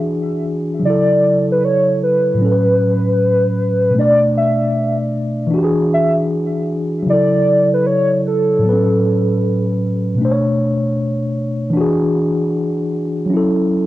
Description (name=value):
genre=hip hop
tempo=77 BPM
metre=4/4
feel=swing 66% on 16ths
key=B dorian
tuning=A4 = 441 Hz
part: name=mellow tine electric piano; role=accompaniment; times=0.0-13.9 s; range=A2 to D5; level=-16 LUFS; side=equal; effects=medium stereo tremolo, cassette tape
part: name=warbly nostalgic lead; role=melody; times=0.9-9.6 s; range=A4 to E5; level=-16 LUFS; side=equal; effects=chorus, analog delay
room=moderate studio reverb, RT60 0.5 s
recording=cassette tape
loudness=-14 LUFS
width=side -15 dB against mid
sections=0.0-13.9 A section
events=none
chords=0.0 E9; 0.8 Bm11/C#; 2.4 A69; 4.0 Bm7; 5.5 E9; 7.1 Bm11/C# (rootless); 8.6 A69; 10.2 Bm9; 11.8 E9; 13.3 F#m7